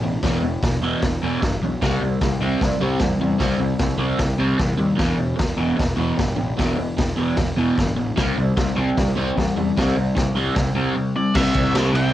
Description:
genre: garage rock duo or trio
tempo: 151 BPM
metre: 4/4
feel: straight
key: unclear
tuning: A4 = 443 Hz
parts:
  - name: crunchy overdriven guitar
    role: riff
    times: 0.0-12.1 s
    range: E2 to E4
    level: -21 LUFS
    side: equal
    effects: phaser, cassette tape
  - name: fuzz picked electric bass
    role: bass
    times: 0.0-12.1 s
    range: E1 to E2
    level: -25 LUFS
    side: equal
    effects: overdrive, tube saturation
  - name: raw garage drum kit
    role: drums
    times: 0.2-12.0 s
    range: crash cymbal, hi-hat, kick drum, ride cymbal, snare drum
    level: -24 LUFS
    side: equal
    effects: cassette tape
  - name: octave-fuzz lead guitar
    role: melody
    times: 11.2-12.1 s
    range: D5 to G5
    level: -25 LUFS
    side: equal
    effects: distortion, cassette tape
room: light reverb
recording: home recording on cassette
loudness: -18 LUFS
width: side -13 dB against mid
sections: 0.0-11.3 A section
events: none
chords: 0.0 E5; 1.8 C; 5.0 E5; 8.2 C5; 11.3 C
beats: | 0.22 0.62 1.01 1.41 | 1.81 2.20 2.60 3.00 | 3.40 3.79 4.19 4.59 | 4.99 5.38 5.78 6.18 | 6.58 6.97 7.37 7.77 | 8.17 8.57 8.97 9.36 | 9.76 10.16 10.55 10.95 | 11.35 11.74

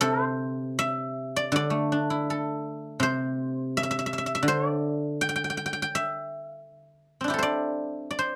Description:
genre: chinese traditional, Chinese solo plucked strings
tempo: 81 BPM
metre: 4/4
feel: rubato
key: unclear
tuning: A4 = 440 Hz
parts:
  - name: guzheng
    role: solo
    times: 0.0-8.4 s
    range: C3 to G5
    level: -28 LUFS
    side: equal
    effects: none
room: light reverb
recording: close, detailed microphones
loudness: -28 LUFS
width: mono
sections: 0.0-8.4 A section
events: none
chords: none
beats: | 0.01 0.77 1.52 2.26 | 3.00 3.72 4.45 5.19 | 5.92 6.66 7.41 8.18

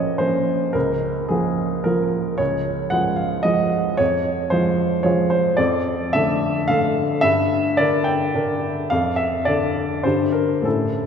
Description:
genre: classical, romantic character piece for solo piano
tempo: 94-115 BPM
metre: 3/4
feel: rubato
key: D minor from 5.6 s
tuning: A4 = 440 Hz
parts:
  - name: warm upright piano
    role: solo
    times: 0.0-11.1 s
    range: Bb1 to G5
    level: -18 LUFS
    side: equal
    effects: none
room: wet cathedral reverb, RT60 4.7 s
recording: recorded in a church or concert hall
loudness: -18 LUFS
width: side -7 dB against mid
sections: 0.0-11.1 A section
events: none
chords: 0.0 Bbm; 0.8 Bbm/Db; 2.4 Db; 4.0 Db/F; 5.6 Dm/F; 7.2 Gm; 8.9 Dm/F; 10.0 Gm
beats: 0.20 | 0.75 1.31 1.86 | 2.40 2.93 3.46 | 4.00 4.53 5.06 | 5.59 6.14 6.69 | 7.23 7.78 8.34 | 8.90 9.46 10.04 | 10.65

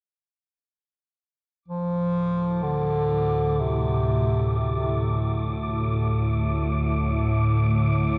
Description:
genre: dark ambient drone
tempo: free time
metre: none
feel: none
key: D minor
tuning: A4 = 439 Hz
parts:
  - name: organ-like drone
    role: drone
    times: 2.5-8.2 s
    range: D2 to A2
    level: -26 LUFS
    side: equal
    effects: ensemble chorus, built-in reverb
  - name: wind-like tuned noise texture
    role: texture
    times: 2.6-8.2 s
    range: D6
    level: -36 LUFS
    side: equal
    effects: built-in reverb
  - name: bright bass clarinet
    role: melody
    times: 1.7-5.3 s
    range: C3 to F3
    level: -28 LUFS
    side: equal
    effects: delay
room: wet cathedral reverb, RT60 6.0 s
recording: worn, warbling old tape, cassette tape, warbly pitch drift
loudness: -24 LUFS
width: mono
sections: 1.7-8.2 A section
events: none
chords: 1.7 D5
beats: free time

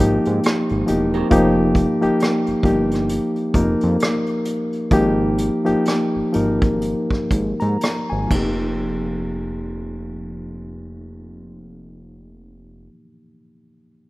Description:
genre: R&B, neo-soul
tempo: 58-68 BPM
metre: 4/4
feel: swing 59% on 16ths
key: F minor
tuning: A4 = 439 Hz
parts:
  - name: bright reed electric piano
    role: accompaniment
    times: 0.0-14.1 s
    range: F3 to Bb5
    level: -19 LUFS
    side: left 1 dB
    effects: none
  - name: fat analog bass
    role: bass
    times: 0.0-12.9 s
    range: E1 to Ab2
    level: -24 LUFS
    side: equal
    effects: none
  - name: vintage brush drum kit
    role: drums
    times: 0.3-8.6 s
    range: hi-hat, kick drum, ride cymbal, rim click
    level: -23 LUFS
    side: equal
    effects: none
  - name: electric guitar through a small old amp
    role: second line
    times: 1.1-1.3 s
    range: C4 to Bb4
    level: -31 LUFS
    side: right 4 dB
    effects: none
room: moderate plate reverb, RT60 3.0 s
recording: rough home demo mix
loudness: -17 LUFS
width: side -19 dB against mid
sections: 0.0-8.8 A section; 8.8-13.0 B section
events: slowing down 1.3-8.8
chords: 0.0 Abmaj7sus2; 1.3 F9sus4; 4.9 Absus2; 8.3 F9sus4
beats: 0.43 | 1.31 2.19 3.09 3.99 | 4.91 5.85 6.81 7.80 | 8.82 9.86 10.90 11.94

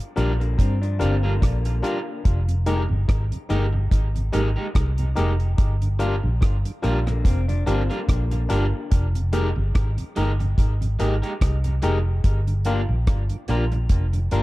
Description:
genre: lovers rock reggae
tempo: 72 BPM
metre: 4/4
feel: swing 56% on 16ths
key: F dorian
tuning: A4 = 440 Hz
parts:
  - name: bell-like tine electric piano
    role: accompaniment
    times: 0.2-14.4 s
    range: D4 to Bb4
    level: -30 LUFS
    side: left 3 dB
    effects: tape echo
  - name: electric guitar through a small old amp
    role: arpeggios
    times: 0.2-8.9 s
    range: Bb2 to D4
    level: -32 LUFS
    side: left 5 dB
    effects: none
  - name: electric guitar at the edge of break-up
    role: stabs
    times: 0.2-14.4 s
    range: G3 to Bb4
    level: -31 LUFS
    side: right 2 dB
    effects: spring reverb, tape echo
  - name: vintage muted fingered electric bass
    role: bass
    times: 0.2-14.4 s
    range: F1 to G2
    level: -22 LUFS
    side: equal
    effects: none
  - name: deep reggae drum kit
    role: drums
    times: 0.2-14.4 s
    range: hi-hat, kick drum, rim click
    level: -22 LUFS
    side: equal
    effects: none
  - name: mellow tonewheel organ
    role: accompaniment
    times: 2.5-14.4 s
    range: F2 to G4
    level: -34 LUFS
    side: right 3 dB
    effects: none
room: small room ambience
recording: dark, warm production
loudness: -20 LUFS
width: side -18 dB against mid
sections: 0.0-14.4 A section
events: none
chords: 0.0 Gm7; 2.3 Fm11; 5.6 Gm7; 8.9 Fm11; 12.2 Gm7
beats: 0.59 1.42 | 2.26 3.09 3.92 4.75 | 5.59 6.42 7.25 8.08 | 8.91 9.75 10.58 11.41 | 12.24 13.07 13.90

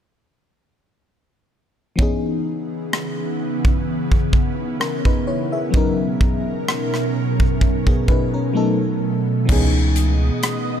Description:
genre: contemporary R&B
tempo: 64 BPM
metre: 4/4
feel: swing 54% on 16ths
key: C# dorian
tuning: A4 = 439 Hz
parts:
  - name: FM electric piano with soft pad layer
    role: accompaniment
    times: 2.0-10.8 s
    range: E3 to E5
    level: -23 LUFS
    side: left 3 dB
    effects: chorus, tremolo
  - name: ethereal airy pad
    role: sustained chords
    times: 2.7-10.8 s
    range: B2 to D#6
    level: -23 LUFS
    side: right 2 dB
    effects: ensemble chorus, built-in reverb
  - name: modern studio drum kit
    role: drums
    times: 2.0-10.7 s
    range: crash cymbal, hi-hat, kick drum, rim click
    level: -19 LUFS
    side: equal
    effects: none
  - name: round analog bass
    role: bass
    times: 9.5-10.3 s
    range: C#2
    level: -17 LUFS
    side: equal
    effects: none
room: little or no reverb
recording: none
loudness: -17 LUFS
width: side -9 dB against mid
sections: 2.0-9.5 A section; 9.5-10.8 B section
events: silent gap 8.6-9.5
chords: 2.0 C#m9; 5.7 Bmaj9; 8.6 B7; 9.5 C#m9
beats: | 1.99 2.93 3.86 4.80 | 5.74 6.68 7.61 8.55 | 9.49 10.43

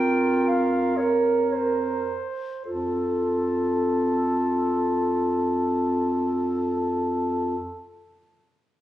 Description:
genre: classical, lyrical piece for single-reed quartet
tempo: 36 BPM (dotted quarters)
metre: 12/8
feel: rubato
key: F major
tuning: A4 = 440 Hz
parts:
  - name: mellow clarinet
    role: melody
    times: 0.0-7.6 s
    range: A4 to G5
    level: -30 LUFS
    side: left 4 dB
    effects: none
  - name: mellow alto saxophone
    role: second line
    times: 0.0-7.5 s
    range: A4 to Bb4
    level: -27 LUFS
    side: right 3 dB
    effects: none
  - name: mellow clarinet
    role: accompaniment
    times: 0.0-7.6 s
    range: F4 to Bb4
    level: -26 LUFS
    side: right 1 dB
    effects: none
  - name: warm bass clarinet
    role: bass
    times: 0.0-7.6 s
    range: F2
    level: -26 LUFS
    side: equal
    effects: none
room: moderate recital hall reverb, RT60 1.4 s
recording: recorded on a phone in the room, club reverb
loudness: -22 LUFS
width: side -13 dB against mid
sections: 0.0-2.6 A section; 2.6-8.8 B section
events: slowing down 0.0-2.6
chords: 0.0 Bb5/F; 2.6 F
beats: 0.95 | 2.65 4.29 5.93

